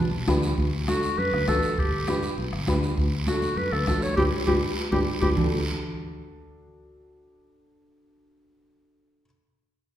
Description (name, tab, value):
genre	latin, cumbia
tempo	200 BPM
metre	4/4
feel	straight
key	D major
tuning	A4 = 440 Hz
part	breathy clarinet	melody	0.0-5.3 s	D4 to C#5	-28 LUFS	equal	none
part	fingered electric bass	bass	0.0-9.2 s	G1 to F#2	-30 LUFS	equal	none
part	dark upright piano	accompaniment	0.3-9.2 s	D4 to B4	-28 LUFS	left 2 dB	none
part	bombo	percussion	0.3-5.4 s	none	-29 LUFS	equal	none
part	congas	percussion	0.3-5.4 s	none	-31 LUFS	right 2 dB	none
part	guiro	percussion	0.3-5.4 s	none	-36 LUFS	right 3 dB	none
room	wet recital hall reverb, RT60 1.5 s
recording	recorded in a church or concert hall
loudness	-22 LUFS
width	side -11 dB against mid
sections	0.6-5.4 A section; 5.4-7.8 B section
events	band accent 4.2-5.4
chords	0.0 G; 0.6 D; 1.8 G; 3.0 D; 4.2 G; 5.4 D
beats	0.28 | 0.57 0.88 1.18 1.47 | 1.77 2.07 2.37 2.67 | 2.97 3.27 3.57 3.87 | 4.17 4.47 4.77 5.07 | 5.37 5.67 5.97 6.27 | 6.57 6.87 7.17 7.47